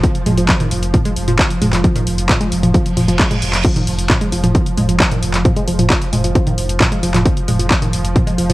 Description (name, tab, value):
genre	driving peak-time techno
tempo	133 BPM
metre	4/4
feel	straight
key	F minor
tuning	A4 = 441 Hz
part	wide unison pluck	riff	0.0-8.5 s	Eb3 to Ab3	-20 LUFS	equal	sidechain pumping, cassette tape, tape echo
part	saturated sub bass	bass	0.0-8.5 s	F1	-20 LUFS	equal	tube saturation, sidechain pumping, low-pass filter
part	swarming drone	drone	0.0-8.5 s	F3	-23 LUFS	right 2 dB	built-in reverb, sidechain pumping, cassette tape
part	electronic kick drum	drums	0.0-8.2 s	none	-16 LUFS	equal	overdrive, cassette tape
part	techno drum kit	drums	0.0-8.5 s	crash cymbal, handclaps, hi-hat, toms	-18 LUFS	equal	overdrive, cassette tape
part	reverse cymbal	sound effects	3.0-3.6 s	none	-26 LUFS	right 5 dB	none
room	light reverb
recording	home recording on cassette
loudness	-13 LUFS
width	side -18 dB against mid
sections	0.0-8.5 A section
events	reverse cymbal 3.0-3.6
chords	none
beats	| 0.04 0.49 0.94 1.39 | 1.84 2.29 2.74 3.19 | 3.65 4.10 4.55 5.00 | 5.45 5.90 6.35 6.80 | 7.25 7.71 8.16